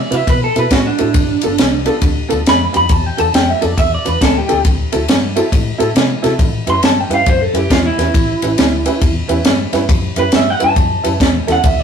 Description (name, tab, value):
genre	electric blues shuffle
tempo	137 BPM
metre	4/4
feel	swing 63% on 8ths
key	unclear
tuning	A4 = 439 Hz
part	electric guitar through a small old amp	second line	0.0-11.8 s	D4 to C6	-16 LUFS	right 2 dB	none
part	honky-tonk upright piano	accompaniment	0.1-11.6 s	B3 to B4	-19 LUFS	right 2 dB	none
part	vintage muted fingered electric bass	bass	0.1-11.8 s	G1 to C3	-20 LUFS	left 1 dB	none
part	compact cocktail drum kit	drums	0.1-11.8 s	kick drum, ride cymbal, snare drum	-14 LUFS	equal	none
room	moderate studio reverb, RT60 0.6 s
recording	rough rehearsal-room recording, warm saturation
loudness	-12 LUFS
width	side -7 dB against mid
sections	0.0-11.8 A section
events	clean electric guitar solo 0.0-11.8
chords	0.0 D7; 1.1 G7 (rootless); 4.6 D7; 6.4 A7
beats	0.27 0.71 | 1.14 1.58 2.02 2.46 | 2.90 3.33 3.77 4.21 | 4.65 5.08 5.52 5.96 | 6.40 6.83 7.27 7.71 | 8.14 8.58 9.02 9.46 | 9.89 10.33 10.77 11.20 | 11.64